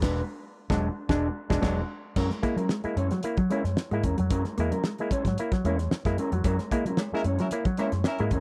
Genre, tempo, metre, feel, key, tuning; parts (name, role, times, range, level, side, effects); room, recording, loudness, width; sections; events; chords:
funk; 112 BPM; 4/4; straight; A4 = 440 Hz
mellow electric guitar; accompaniment; 0.0-8.4 s; G#3 to Db5; -34 LUFS; equal; spring reverb
fingered electric bass; bass; 0.0-8.4 s; E1 to Gb3; -32 LUFS; equal
cloth-damped thuddy drum kit; drums; 0.0-8.4 s; crash cymbal, hi-hat, kick drum, snare drum; -31 LUFS; equal
auto-wah clav; stabs; 0.7-8.3 s; F#3 to Fb4; -33 LUFS; equal
mellow electric guitar; riff; 2.3-8.4 s; Gb3 to Bb3; -34 LUFS; equal
cowbell; percussion; 6.5-8.2 s; -43 LUFS; equal
warm horn section; second line; 7.1-8.2 s; Db4 to Bb4; -34 LUFS; equal
little or no reverb; dry, close 1970s-style studio recording; -27 LUFS; mono
0.0-2.2 A section; 2.2-8.4 B section
band accent 0.0-2.2
0.0 E9; 2.2 Gb9